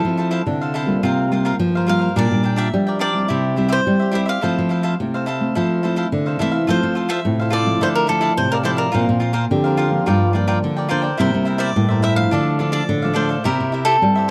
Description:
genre	samba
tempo	106 BPM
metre	4/4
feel	straight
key	F major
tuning	A4 = 440 Hz
part	cavaquinho	melody	0.0-14.3 s	A4 to F5	-25 LUFS	equal	none
part	cavaquinho	accompaniment	0.0-14.3 s	D4 to G5	-27 LUFS	equal	none
part	nylon-string guitar	accompaniment	0.0-14.3 s	F2 to A4	-25 LUFS	equal	none
part	nylon-string guitar	bass	0.0-14.3 s	G2 to G3	-22 LUFS	equal	none
part	mellow trombone	second line	9.5-10.8 s	D4 to G4	-26 LUFS	equal	none
room	small room ambience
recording	dry, close 1970s-style studio recording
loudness	-19 LUFS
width	mono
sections	0.0-6.7 A section; 6.7-14.3 A section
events	none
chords	0.0 Fmaj7; 1.0 C7sus4; 2.2 Bb6; 3.3 C; 4.4 Fmaj7; 6.7 F; 7.8 Dmadd9; 9.0 Bbsus2; 10.1 Gm7; 11.2 C7; 12.3 Dm; 13.5 C

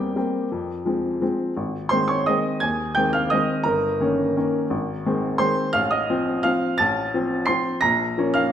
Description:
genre	classical, piano waltz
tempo	171 BPM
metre	3/4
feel	rubato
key	unclear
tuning	A4 = 439 Hz
part	clear upright piano	solo	0.0-8.5 s	G1 to C7	-20 LUFS	equal	none
room	wet recital hall reverb, RT60 1.3 s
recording	none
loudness	-20 LUFS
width	side -9 dB against mid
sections	0.0-8.5 A section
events	none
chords	0.0 C7/E; 0.5 Fm; 1.6 Ab; 3.7 Eb7/G; 4.7 Ab; 5.8 F7/A; 7.8 Bbm

